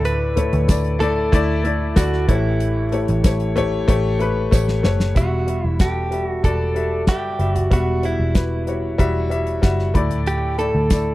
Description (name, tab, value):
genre	piano-driven pop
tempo	94 BPM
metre	4/4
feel	straight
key	unclear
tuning	A4 = 440 Hz
part	direct-recorded clean electric guitar	melody	0.0-11.1 s	E4 to B4	-25 LUFS	right 2 dB	spring reverb, slapback echo
part	warm concert grand piano	accompaniment	0.0-11.1 s	A2 to B5	-22 LUFS	left 4 dB	none
part	vintage muted picked electric bass	bass	0.0-11.1 s	E1 to D2	-21 LUFS	equal	none
part	damped 70s drum kit	drums	0.1-11.1 s	hi-hat, kick drum, snare drum, toms	-18 LUFS	equal	none
part	tambourine	percussion	0.7-4.7, 10.9-11.1 s	none	-36 LUFS	right 19 dB	none
room	little or no reverb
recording	dry, close 1970s-style studio recording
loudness	-17 LUFS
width	side -17 dB against mid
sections	0.0-5.2 A section; 5.2-11.1 B section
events	drum fill 4.5-5.2; grand piano fill 9.0-10.3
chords	0.0 Dsus2; 2.3 A7; 5.2 Emadd9; 9.9 Dsus2